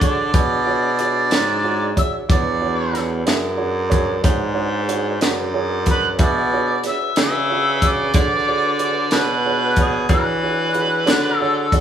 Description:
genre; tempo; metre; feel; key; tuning
slow blues; 61 BPM (dotted quarters); 12/8; straight; E mixolydian; A4 = 440 Hz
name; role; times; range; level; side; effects
warm harmonica; melody; 0.0-11.8 s; G#4 to E5; -20 LUFS; right 1 dB; overdrive
warm upright piano; accompaniment; 0.0-11.8 s; D4 to E5; -25 LUFS; right 5 dB; none
mellow tonewheel organ; sustained chords; 0.0-11.8 s; D4 to D5; -31 LUFS; left 3 dB; none
warm baritone saxophone; bass; 0.0-11.8 s; E2 to E3; -21 LUFS; equal; none
compact cocktail drum kit; drums; 0.0-11.8 s; hi-hat, kick drum, snare drum; -19 LUFS; equal; none
room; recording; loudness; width
light reverb; band playing live in one room, small room ambience; -16 LUFS; side -9 dB against mid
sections
0.0-11.8 A section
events
none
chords
0.0 E13

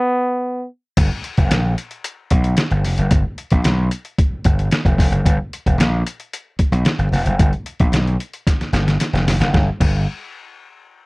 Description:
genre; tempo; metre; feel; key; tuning
funk; 112 BPM; 4/4; straight; G mixolydian; A4 = 441 Hz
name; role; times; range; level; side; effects
clear trombone; melody; 0.0-0.7 s; B3; -18 LUFS; equal; none
gritty slap bass; bass; 1.0-10.1 s; F1 to B1; -17 LUFS; equal; overdrive
trip hop sampler-style drum kit; drums; 1.0-9.9 s; crash cymbal, hi-hat, kick drum, snare drum; -18 LUFS; equal; overdrive
room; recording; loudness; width
little or no reverb; dry, close 1970s-style studio recording; -16 LUFS; side -28 dB against mid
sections
1.0-9.5 A section; 9.5-11.1 B section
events
break 0.0-1.0; drum fill 8.5-9.5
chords
0.0 N.C.; 1.0 G7; 9.5 N.C.

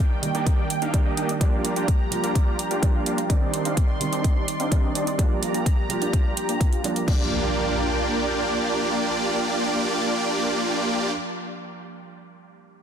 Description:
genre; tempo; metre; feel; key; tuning
EDM, festival progressive house; 127 BPM; 4/4; straight; Bb major; A4 = 440 Hz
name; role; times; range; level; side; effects
felt-muted upright piano; accompaniment; 0.0-12.8 s; Eb3 to D5; -31 LUFS; right 4 dB; vintage 12-bit sampler grit, sidechain pumping, dub echo
lush unison pad; sustained chords; 0.0-11.1 s; Eb3 to C6; -30 LUFS; right 1 dB; chorus, phaser, sidechain pumping
house drum kit; drums; 0.2-7.2 s; crash cymbal, hi-hat; -31 LUFS; right 3 dB; none
supersaw chords; riff; 0.3-11.1 s; Bb3 to G5; -26 LUFS; equal; sidechain pumping, low-pass filter, dub echo
electronic kick drum; drums; 0.5-7.2 s; none; -21 LUFS; equal; none
impact; sound effects; 7.1-11.2 s; none; -32 LUFS; left 1 dB; none
room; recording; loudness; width
light reverb; dense, heavily limited modern master; -21 LUFS; side -8 dB against mid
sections
0.0-7.1 A section; 7.1-10.9 B section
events
filter sweep on supersaw synth 0.0-7.1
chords
0.0 Ebmaj7; 1.4 Bb6; 3.3 Cmadd9; 5.2 Bb6

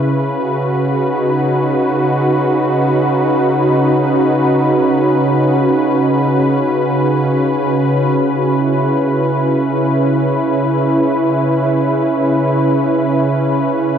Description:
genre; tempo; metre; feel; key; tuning
ambient; free time; none; none; C# minor; A4 = 440 Hz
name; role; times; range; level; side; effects
warm analog pad; solo; 0.0-14.0 s; C#3 to B4; -12 LUFS; equal; chorus
room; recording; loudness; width
wet huge ambient reverb, RT60 8.3 s; none; -12 LUFS; side -8 dB against mid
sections
0.0-8.2 A section; 8.2-14.0 B section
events
none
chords
0.1 Badd9/C#; 8.2 C#m7

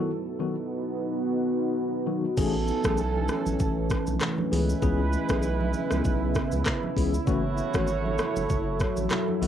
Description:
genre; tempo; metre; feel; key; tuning
afrobeats; 98 BPM; 4/4; swing 55% on 16ths; unclear; A4 = 440 Hz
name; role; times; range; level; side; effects
tine electric piano; accompaniment; 0.0-9.5 s; D#3 to G#4; -29 LUFS; left 6 dB; medium tremolo
deep dark ambient pad; sustained chords; 0.0-9.5 s; C#3 to A4; -29 LUFS; equal; chorus, built-in reverb
mellow horn section; second line; 2.4-9.5 s; E3 to D#5; -32 LUFS; right 7 dB; none
saturated sub bass; bass; 2.4-9.5 s; F#1 to C#2; -29 LUFS; equal; none
afro-pop drum kit; drums; 2.4-9.5 s; crash cymbal, handclaps, hi-hat, kick drum, rim click, shaker; -29 LUFS; equal; cassette tape
congas; percussion; 2.4-9.4 s; none; -36 LUFS; right 6 dB; none
room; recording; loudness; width
moderate small room reverb, RT60 0.5 s; home recording on cassette; -24 LUFS; side -10 dB against mid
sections
0.0-2.4 A section; 2.4-9.5 B section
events
break 0.0-2.4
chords
0.0 B; 2.4 Amaj7; 4.5 C#m7; 7.3 F#m7

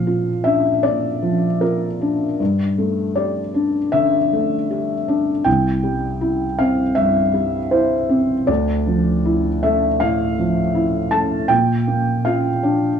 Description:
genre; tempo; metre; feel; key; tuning
neoclassical minimalist piano; 79 BPM; 4/4; rubato; unclear; A4 = 440 Hz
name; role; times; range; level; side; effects
felt-muted upright piano; solo; 0.0-13.0 s; C2 to A5; -16 LUFS; equal; none
room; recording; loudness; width
moderate studio reverb, RT60 0.5 s; worn, warbling old tape, cassette tape, warbly pitch drift; -16 LUFS; side -7 dB against mid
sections
0.0-13.0 A section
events
none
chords
0.0 Bb; 2.4 Gsus2; 5.5 C; 8.5 Dmadd9; 11.5 Bb

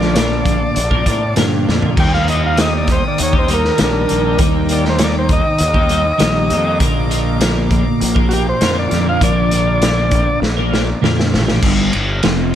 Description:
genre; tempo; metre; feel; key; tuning
psychedelic rock; 99 BPM; 4/4; straight; unclear; A4 = 440 Hz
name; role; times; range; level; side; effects
combo organ; melody; 0.0-10.4 s; D4 to G5; -19 LUFS; equal; analog delay
clear studio string section; sustained chords; 0.0-11.6 s; F5 to Eb6; -29 LUFS; right 1 dB; none
twelve-string electric guitar; riff; 0.0-12.6 s; F2 to Bb4; -18 LUFS; equal; rotary speaker, double-tracked left and right
fuzz fingered electric bass; bass; 0.0-12.6 s; F1 to A2; -19 LUFS; equal; overdrive
raw garage drum kit; drums; 0.0-12.4 s; crash cymbal, hi-hat, kick drum, ride cymbal, snare drum, toms; -18 LUFS; equal; none
room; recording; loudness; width
light reverb; none; -12 LUFS; side -10 dB against mid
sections
0.0-11.6 A section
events
transistor combo organ solo 0.0-11.6; drum fill 1.7-2.0, 10.4-11.6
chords
0.0 Bb; 2.0 Eb; 6.8 Bb; 11.6 N.C.

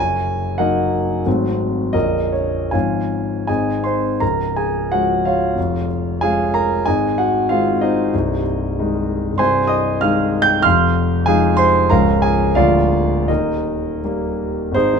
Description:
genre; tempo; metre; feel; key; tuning
classical, romantic character piece for solo piano; 73-97 BPM; 2/4; rubato; Db major; A4 = 437 Hz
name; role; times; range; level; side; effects
warm concert grand piano; solo; 0.0-15.0 s; Bb0 to G6; -15 LUFS; equal; none
room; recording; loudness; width
moderate stone room reverb, RT60 1.3 s; none; -15 LUFS; side -6 dB against mid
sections
0.0-4.2 A section; 4.2-14.7 B section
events
none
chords
0.0 Ebm/Gb; 1.3 Ab7b9; 1.9 Bbm; 2.7 Db/Ab; 3.5 Ab; 4.2 Db; 5.6 Db/F; 6.9 Ab; 8.1 Ab/C; 10.6 Fm7; 11.9 Bbm7/Db; 12.6 Bb7/D; 13.3 Eb

